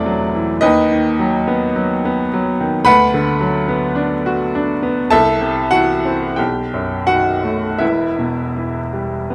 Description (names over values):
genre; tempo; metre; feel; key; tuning
classical, romantic nocturne for solo piano; 39-55 BPM; 4/4; rubato; unclear; A4 = 440 Hz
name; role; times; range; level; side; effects
bright baby grand piano; solo; 0.0-9.3 s; E1 to B5; -17 LUFS; equal; none
room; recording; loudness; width
moderate recital hall reverb, RT60 1.5 s; close, detailed microphones; -17 LUFS; mono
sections
0.0-9.3 A section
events
none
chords
0.0 F#m7b5/E; 0.6 B/D#; 2.9 Bm/D; 5.1 Am/C; 6.4 B7; 7.8 Em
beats
0.59 1.74 | 2.86 3.96 5.12 6.38 | 7.81 9.30